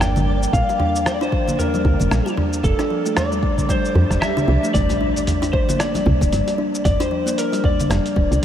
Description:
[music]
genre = organic downtempo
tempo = 114 BPM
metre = 4/4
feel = swing 58% on 16ths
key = G dorian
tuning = A4 = 439 Hz
[part]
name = electric slide guitar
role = melody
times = 0.0-8.4 s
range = A4 to G5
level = -23 LUFS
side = left 2 dB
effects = vintage 12-bit sampler grit, tape echo
[part]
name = woody FM bass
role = bass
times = 0.0-8.4 s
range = D1 to F2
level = -18 LUFS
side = right 1 dB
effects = sidechain pumping
[part]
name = dusty soul sampler-style drum kit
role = drums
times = 0.0-8.4 s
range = cabasa, hi-hat, rim click, toms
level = -25 LUFS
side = right 1 dB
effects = none
[part]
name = congas and bongos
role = percussion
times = 0.0-8.4 s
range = none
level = -29 LUFS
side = left 1 dB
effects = none
[part]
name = twinkling granular texture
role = texture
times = 0.0-4.8 s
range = D5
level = -36 LUFS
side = right 3 dB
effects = built-in reverb, analog chorus
[part]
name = kalimba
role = arpeggios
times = 0.2-8.4 s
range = F3 to D4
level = -23 LUFS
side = left 1 dB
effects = tape echo
[part]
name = electronic kick drum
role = drums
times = 0.5-8.3 s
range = none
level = -22 LUFS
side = right 1 dB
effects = overdrive
[part]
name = swell and impact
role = sound effects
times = 3.9-6.8 s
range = none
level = -28 LUFS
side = right 1 dB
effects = none
[sound]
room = moderate huge ambient reverb, RT60 8.9 s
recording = dreamy mix soaked in reverb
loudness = -16 LUFS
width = side -10 dB against mid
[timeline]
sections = 0.0-4.7 A section; 4.7-8.4 B section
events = swell 3.9-4.7; impact 4.7-6.8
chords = 0.0 G5; 0.5 Bb; 2.6 F; 4.7 G5

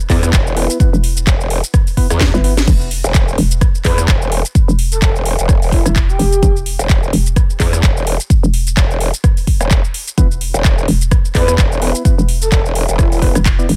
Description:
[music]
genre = bass house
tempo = 128 BPM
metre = 4/4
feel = swing 56% on 16ths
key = E minor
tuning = A4 = 444 Hz
[part]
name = house drum kit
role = drums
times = 0.0-13.8 s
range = crash cymbal, handclaps, hi-hat, rim click, shaker, snare drum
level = -23 LUFS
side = equal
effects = none
[part]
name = percussive organ stab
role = stabs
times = 0.1-2.5, 10.2-13.7 s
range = B3 to D5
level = -26 LUFS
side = equal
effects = chorus, sidechain pumping, dub echo
[part]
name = growl bass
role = bass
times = 0.1-13.3 s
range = E1 to E2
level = -19 LUFS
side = equal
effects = chorus, overdrive, sidechain pumping
[part]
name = electronic kick drum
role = drums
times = 0.1-13.6 s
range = none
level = -15 LUFS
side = equal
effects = none
[part]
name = hollow knocking FM bass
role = bass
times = 0.9-13.8 s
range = E1 to G1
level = -17 LUFS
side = equal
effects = sidechain pumping
[part]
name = breathy flute-like synth lead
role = melody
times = 3.8-6.6, 11.3-13.2 s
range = E4 to B4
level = -24 LUFS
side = equal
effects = analog chorus, dub echo
[sound]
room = digital ambience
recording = none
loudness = -14 LUFS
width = mono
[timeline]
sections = 0.0-2.7 A section; 2.7-13.8 A section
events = drop 0.0-2.7, 2.7-13.8; drum fill 2.2-2.7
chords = 0.0 E5

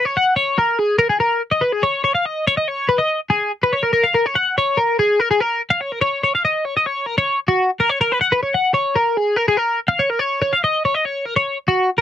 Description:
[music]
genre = rock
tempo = 143 BPM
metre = 5/4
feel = straight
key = unclear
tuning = A4 = 440 Hz
[part]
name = twelve-string electric guitar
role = solo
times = 0.0-12.0 s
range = F#4 to F#5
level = -16 LUFS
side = left 1 dB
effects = analog chorus
[sound]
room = light reverb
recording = dry, close 1970s-style studio recording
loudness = -16 LUFS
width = side -10 dB against mid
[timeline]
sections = 0.0-12.0 A section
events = none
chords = none

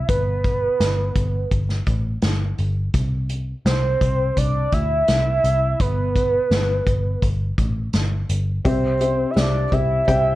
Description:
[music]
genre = piano-driven pop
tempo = 84 BPM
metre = 4/4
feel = straight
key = C major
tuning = A4 = 440 Hz
[part]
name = soft octave-layered synth lead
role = melody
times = 0.0-10.4 s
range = B4 to E5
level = -21 LUFS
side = right 1 dB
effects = chorus, phaser
[part]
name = vintage muted picked electric bass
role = bass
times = 0.0-10.4 s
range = G1 to D2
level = -22 LUFS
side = equal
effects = none
[part]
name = unplugged drum kit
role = drums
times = 0.1-10.2 s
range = hi-hat, kick drum, snare drum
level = -24 LUFS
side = equal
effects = none
[part]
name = felt-muted upright piano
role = accompaniment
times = 8.6-10.4 s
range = C3 to G5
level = -23 LUFS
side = left 2 dB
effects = none
[sound]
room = light reverb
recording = worn, warbling old tape, cassette tape, warbly pitch drift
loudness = -18 LUFS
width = side -16 dB against mid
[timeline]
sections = 0.0-10.4 A section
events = none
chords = 0.1 G; 2.9 C; 5.8 G; 8.7 C

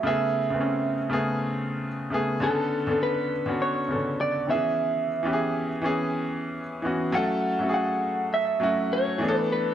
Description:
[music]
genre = soul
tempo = 102 BPM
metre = 4/4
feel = swing 58% on 16ths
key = F# minor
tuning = A4 = 440 Hz
[part]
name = electric guitar through a small old amp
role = melody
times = 0.0-9.7 s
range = A4 to F#5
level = -26 LUFS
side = right 1 dB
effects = slapback echo
[part]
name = bright baby grand piano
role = accompaniment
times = 0.0-9.7 s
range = C#3 to A4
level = -26 LUFS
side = equal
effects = none
[sound]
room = moderate echo chamber reverb, RT60 2.0 s, small room ambience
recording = none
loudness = -24 LUFS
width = side -10 dB against mid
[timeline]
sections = 0.0-7.1 A section; 7.1-9.7 B section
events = none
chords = 0.1 Amaj9; 2.4 Bm9; 4.5 C#m7; 7.1 F#m7; 9.2 E7sus4

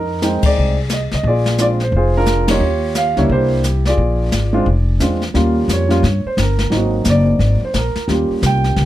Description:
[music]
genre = jazz piano trio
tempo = 175 BPM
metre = 4/4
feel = swing 63% on 8ths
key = Eb major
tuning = A4 = 440 Hz
[part]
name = warm upright piano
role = melody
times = 0.0-8.9 s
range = Gb3 to G5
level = -17 LUFS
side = right 1 dB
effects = none
[part]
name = upright bass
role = bass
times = 0.0-8.9 s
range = F1 to G2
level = -17 LUFS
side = equal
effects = none
[part]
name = jazz brush drum kit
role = drums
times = 0.2-8.9 s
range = brushed snare drum, hi-hat, kick drum, ride cymbal, snare drum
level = -22 LUFS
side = left 2 dB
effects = none
[sound]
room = little or no reverb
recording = close, detailed microphones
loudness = -13 LUFS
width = side -14 dB against mid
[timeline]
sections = 0.0-5.4 A section; 5.4-8.9 B section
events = band accent 0.4, 2.4; upright piano solo 5.4-8.9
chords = 0.0 Fm7; 1.2 Bb9; 2.6 Eb9; 3.3 C7; 4.0 Bb9; 5.4 Eb9; 6.7 Ab9; 8.1 Eb9

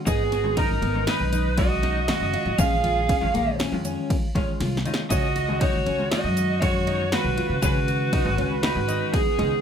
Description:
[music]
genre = progressive instrumental, band music in an uneven meter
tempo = 119 BPM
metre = 5/4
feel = straight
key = unclear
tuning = A4 = 439 Hz
[part]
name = vintage hollow-body jazz guitar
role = accompaniment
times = 0.0-9.6 s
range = D#3 to G#4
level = -30 LUFS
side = left 2 dB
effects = none
[part]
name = lead guitar through a small cranked amp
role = melody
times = 0.1-9.6 s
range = G#4 to E#5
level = -25 LUFS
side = right 2 dB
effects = overdrive, plate reverb
[part]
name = bright alto saxophone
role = second line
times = 0.1-9.6 s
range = B3 to G#4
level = -31 LUFS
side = right 5 dB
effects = none
[part]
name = fingerpicked twelve-string acoustic guitar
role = arpeggios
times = 0.1-9.5 s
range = A#3 to F#4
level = -31 LUFS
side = left 2 dB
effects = none
[part]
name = upright bass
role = bass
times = 0.1-9.5 s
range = F#1 to C#3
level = -27 LUFS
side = equal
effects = none
[part]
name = punchy analog drum machine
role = drums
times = 0.1-9.5 s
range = kick drum, ride cymbal, snare drum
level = -26 LUFS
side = equal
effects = none
[part]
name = tube shaker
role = percussion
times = 0.1-9.3 s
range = none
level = -38 LUFS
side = right 6 dB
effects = none
[sound]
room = moderate small room reverb, RT60 0.5 s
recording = none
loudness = -21 LUFS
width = side -8 dB against mid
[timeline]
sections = 0.0-9.6 A section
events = drum fill 4.6-5.1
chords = 0.1 G#m7; 2.6 A#m7; 5.1 C#7sus4

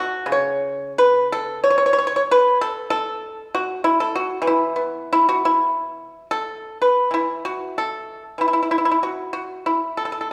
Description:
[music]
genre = chinese traditional, Chinese solo plucked strings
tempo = 94 BPM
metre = 2/4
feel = rubato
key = E zhi mode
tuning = A4 = 440 Hz
[part]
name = pipa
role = solo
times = 0.0-10.3 s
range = C#3 to C#5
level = -21 LUFS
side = equal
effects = none
[sound]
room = wet recital hall reverb, RT60 1.5 s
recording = recorded in a church or concert hall, studio ambience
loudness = -20 LUFS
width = mono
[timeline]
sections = 0.0-5.8 A section; 5.8-10.3 B section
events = none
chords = none

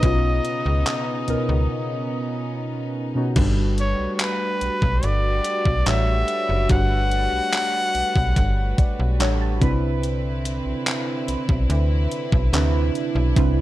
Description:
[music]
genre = contemporary R&B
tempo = 72 BPM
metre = 4/4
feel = straight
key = unclear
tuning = A4 = 442 Hz
[part]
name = clear trumpet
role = melody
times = 0.0-9.2 s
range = B4 to F#5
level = -25 LUFS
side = left 1 dB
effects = digital delay
[part]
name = muted felt-like synth keys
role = accompaniment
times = 0.0-13.6 s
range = B2 to B5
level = -26 LUFS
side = right 1 dB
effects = chorus, phaser
[part]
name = warm studio string section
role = sustained chords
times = 0.0-13.6 s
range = C#3 to B4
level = -31 LUFS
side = left 1 dB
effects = none
[part]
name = slap-like FM bass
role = bass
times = 0.0-13.6 s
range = F#1 to D2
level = -21 LUFS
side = equal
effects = none
[part]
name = clean 12-bit digital drum machine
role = drums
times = 0.0-13.6 s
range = crash cymbal, handclaps, hi-hat, kick drum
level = -22 LUFS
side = equal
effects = overdrive
[part]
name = swell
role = sound effects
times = 13.5-13.6 s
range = none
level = -29 LUFS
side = right 4 dB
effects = none
[sound]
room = little or no reverb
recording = dark, warm production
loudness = -19 LUFS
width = side -15 dB against mid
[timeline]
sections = 0.0-3.4 A section; 3.4-13.6 B section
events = break 1.7-3.4; synth keys fill 8.4-10.0; swell 13.5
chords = 0.0 Bmaj9; 3.4 Gmaj9; 9.6 Cmaj9

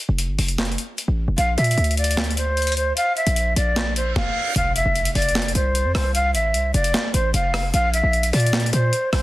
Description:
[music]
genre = hip hop, trap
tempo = 151 BPM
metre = 4/4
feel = half-time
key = F major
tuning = A4 = 441 Hz
[part]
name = hard-hitting 808-style bass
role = bass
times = 0.1-9.2 s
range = F1 to Bb2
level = -21 LUFS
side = equal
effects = none
[part]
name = breakbeat sampler-style drum kit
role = drums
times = 0.2-9.2 s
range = handclaps, hi-hat, kick drum, rim click, snare drum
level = -24 LUFS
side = equal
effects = none
[part]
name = breathy jazz flute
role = melody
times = 1.4-9.2 s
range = C5 to F5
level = -22 LUFS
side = equal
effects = low-pass filter
[part]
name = reverse cymbal and impact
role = sound effects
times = 3.9-6.1 s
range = none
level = -31 LUFS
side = right 2 dB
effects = none
[sound]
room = light reverb, digital ambience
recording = dense, heavily limited modern master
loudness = -18 LUFS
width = side -17 dB against mid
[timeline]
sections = 0.0-4.6 A section; 4.6-9.2 B section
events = break 0.0-1.4; reverse cymbal 3.9-4.6; impact 4.6-6.1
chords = 0.0 F; 1.4 Bb; 4.6 F; 7.7 Bb

